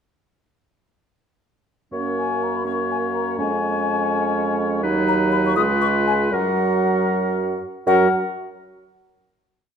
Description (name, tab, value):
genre	quick classical-period movement for wind quintet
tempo	77-84 BPM (dotted quarters)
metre	6/8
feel	straight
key	F# major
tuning	A4 = 444 Hz
part	warm oboe	second line	1.9-8.1 s	A#4 to C#5	-25 LUFS	left 4 dB	none
part	clear French horn	accompaniment	1.9-8.1 s	F#3 to A#3	-26 LUFS	equal	none
part	warm clarinet	accompaniment	1.9-8.1 s	C#4 to F#4	-26 LUFS	right 7 dB	none
part	warm bassoon	bass	1.9-8.1 s	C#2 to F#2	-24 LUFS	right 3 dB	none
part	mellow hollow silver concert flute	melody	2.2-8.2 s	F#5 to D#6	-25 LUFS	left 8 dB	none
room	wet recital hall reverb, RT60 1.4 s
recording	dark, warm production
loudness	-18 LUFS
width	side -7 dB against mid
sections	1.9-7.9 A section; 7.9-9.4 final chord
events	none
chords	1.9 F#; 3.4 C#/E#; 4.8 B/D#; 5.6 C#7; 6.3 F#; 7.9 N.C.